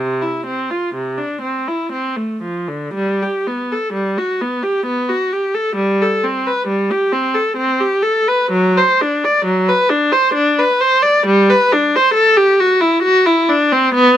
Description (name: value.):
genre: classical, baroque-style suite movement for unaccompanied viola.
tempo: 66 BPM.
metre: 3/4.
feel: uneven beats, rubato.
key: G major.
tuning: A4 = 440 Hz.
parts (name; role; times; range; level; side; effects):
rich viola; solo; 0.0-14.2 s; C3 to D5; -13 LUFS; equal; none.
room: light reverb.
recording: close, detailed microphones.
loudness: -13 LUFS.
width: side -10 dB against mid.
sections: 0.0-3.0 A section; 3.0-14.2 A section.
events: none.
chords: none.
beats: 0.94 1.93 | 2.95 3.93 4.86 | 5.77 6.68 7.57 | 8.51 9.45 10.36 | 11.26 12.14 13.02 | 13.94.